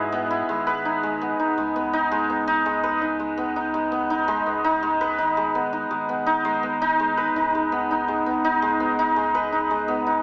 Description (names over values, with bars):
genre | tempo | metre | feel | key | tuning
folktronica | 83 BPM | 4/4 | straight | G# minor | A4 = 439 Hz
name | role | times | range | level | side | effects
hammered dulcimer | arpeggios | 0.0-10.2 s | G#3 to B4 | -20 LUFS | equal | tape echo
warm sub bass | bass | 0.0-10.2 s | G#1 to G#2 | -45 LUFS | equal | none
room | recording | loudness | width
moderate lush hall reverb, RT60 2.1 s | small speaker sound | -20 LUFS | side -34 dB against mid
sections
0.5-10.2 A section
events
none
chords
0.5 G#m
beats
| 0.49 1.22 1.94 2.66 | 3.38 4.11 4.83 5.55 | 6.28 7.00 7.72 8.44 | 9.17 9.89